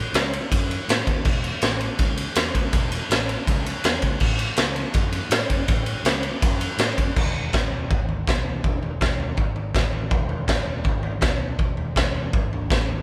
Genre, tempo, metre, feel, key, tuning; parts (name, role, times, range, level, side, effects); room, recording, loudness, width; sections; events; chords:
garage rock duo or trio; 162 BPM; 4/4; straight; E major; A4 = 440 Hz
overdriven picked electric bass; bass; 0.1-13.0 s; E1 to A2; -31 LUFS; equal
raw garage drum kit; drums; 0.1-13.0 s; crash cymbal, kick drum, ride cymbal, snare drum, toms; -24 LUFS; equal
light reverb; band playing live in one room; -23 LUFS; mono
0.0-7.2 A section; 7.2-13.0 B section